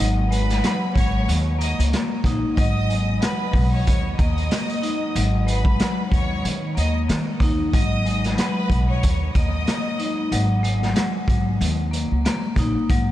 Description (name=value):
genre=hip hop, boom-bap hip-hop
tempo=93 BPM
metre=4/4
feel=swing 57% on 16ths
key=G# minor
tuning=A4 = 440 Hz
part: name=vibraphone with medium hard mallets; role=accompaniment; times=0.0-13.1 s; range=F#3 to D#4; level=-25 LUFS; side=left 2 dB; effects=cassette tape
part: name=upright bass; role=bass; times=0.0-13.1 s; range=G#1 to D#3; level=-22 LUFS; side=equal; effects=none
part: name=raw garage drum kit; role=drums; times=0.0-13.1 s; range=hi-hat, kick drum, rim click, snare drum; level=-23 LUFS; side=equal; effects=vintage 12-bit sampler grit
part: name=rich studio violin section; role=melody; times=0.3-10.3 s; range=B4 to D#6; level=-30 LUFS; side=right 1 dB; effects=ping-pong delay
room=moderate huge ambient reverb, RT60 7.6 s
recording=dreamy mix soaked in reverb, vinyl crackle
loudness=-19 LUFS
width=side -14 dB against mid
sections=0.0-13.1 A section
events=none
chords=0.0 G#m7; 1.3 D#5; 2.6 G#m7; 3.9 D#5; 5.2 G#m7; 6.4 D#5; 7.7 G#m7; 9.0 D#5; 10.3 F#sus2/G#; 11.6 D#5